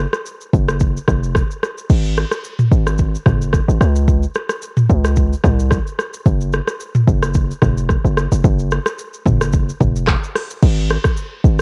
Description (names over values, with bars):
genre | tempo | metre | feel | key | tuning
afrobeats | 110 BPM | 4/4 | swing 55% on 16ths | unclear | A4 = 444 Hz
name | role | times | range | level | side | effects
hard-hitting 808-style bass | bass | 0.0-11.6 s | F1 to Db2 | -18 LUFS | equal | none
afro-pop drum kit | drums | 0.1-11.6 s | crash cymbal, handclaps, hi-hat, kick drum, rim click, shaker, toms | -19 LUFS | equal | vintage 12-bit sampler grit
room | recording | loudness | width
digital ambience | home recording on cassette | -17 LUFS | mono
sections
0.0-1.9 A section; 1.9-10.6 B section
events
none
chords
none